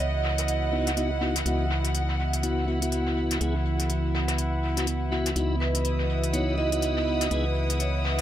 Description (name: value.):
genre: deep house.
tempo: 123 BPM.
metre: 4/4.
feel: swing 59% on 16ths.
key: C# minor.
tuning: A4 = 440 Hz.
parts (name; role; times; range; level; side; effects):
vibraphone with medium hard mallets; melody; 0.0-1.2, 5.6-8.2 s; B4 to D#5; -31 LUFS; right 5 dB; tape echo.
warm analog pad; sustained chords; 0.0-8.2 s; E3 to D#5; -34 LUFS; right 2 dB; chorus, vintage 12-bit sampler grit.
organ-like FM bass; bass; 0.0-8.2 s; C#2; -27 LUFS; equal; none.
jazz brush drum kit; drums; 0.0-8.2 s; hi-hat, snare drum; -36 LUFS; left 1 dB; high-pass filter on hats, low-pass filter on hats, high-pass filter on snare, low-pass filter on snare, high-pass filter on room, low-pass filter on room, tape echo.
rich studio string section; texture; 0.0-8.2 s; E4 to D#6; -34 LUFS; equal; none.
warm chamber violin section; texture; 0.0-8.2 s; E4 to F#5; -37 LUFS; left 3 dB; none.
electronic hi-hat; drums; 0.4-8.2 s; none; -32 LUFS; left 2 dB; none.
tonewheel organ; stabs; 0.7-7.5 s; B3 to G#4; -31 LUFS; left 1 dB; chorus vibrato, low-pass filter, tape echo.
room: light reverb.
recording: echo-heavy mix.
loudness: -24 LUFS.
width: side -11 dB against mid.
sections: 0.0-8.2 A section.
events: filter sweep on tonewheel organ 0.0-8.2; filter sweep on analog synth pad 0.0-8.2.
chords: 0.0 C#m11.